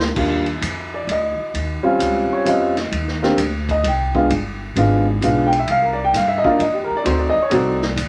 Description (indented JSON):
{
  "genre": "jazz, small-group swing and bop",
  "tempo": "131 BPM",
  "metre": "3/4",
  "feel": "swing 66% on 8ths",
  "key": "Eb major",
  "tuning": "A4 = 440 Hz",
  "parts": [
    { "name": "warm upright piano", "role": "accompaniment", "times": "0.0-8.1 s", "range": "G3 to G5", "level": "-20 LUFS", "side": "equal", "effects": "none" },
    { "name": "upright bass", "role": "bass", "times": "0.0-8.1 s", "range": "G1 to G2", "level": "-26 LUFS", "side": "equal", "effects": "none" },
    { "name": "vintage drum kit", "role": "drums", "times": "0.0-8.1 s", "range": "crash cymbal, hi-hat, kick drum, ride cymbal, snare drum", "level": "-29 LUFS", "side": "equal", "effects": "none" }
  ],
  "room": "wet small room reverb, RT60 0.5 s",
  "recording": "none",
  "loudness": "-19 LUFS",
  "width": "mono",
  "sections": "0.2-8.1 A section",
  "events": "drum fill 0.0",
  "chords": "0.2 Ebmaj9; 1.5 Eb13; 2.9 Abmaj7#11 (rootless); 4.3 G7b9; 5.7 Cm11; 7.1 D7b9"
}